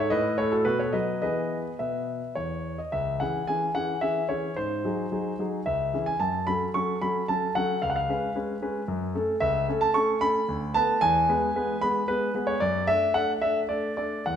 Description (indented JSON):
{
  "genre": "classical-period piano sonatina",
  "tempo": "111 BPM",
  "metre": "3/4",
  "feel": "rubato",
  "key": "C# minor",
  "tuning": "A4 = 440 Hz",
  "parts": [
    { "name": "clear grand piano", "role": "solo", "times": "0.0-14.4 s", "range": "C#2 to C#6", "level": "-24 LUFS", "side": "equal", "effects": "none" }
  ],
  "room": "wet recital hall reverb, RT60 1.3 s",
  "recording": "minimal, uncompressed stereo recording",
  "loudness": "-24 LUFS",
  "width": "side -8 dB against mid",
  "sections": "0.0-2.9 A section; 2.9-14.4 B section",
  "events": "none",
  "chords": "0.1 F#m/A; 0.7 B; 1.2 E; 2.9 C#m; 4.6 G#7; 5.7 C#m; 6.2 F#m; 7.8 C#7; 8.9 F#m; 9.4 A/C#; 10.5 Bm7/D; 11.0 E; 12.6 D/F#"
}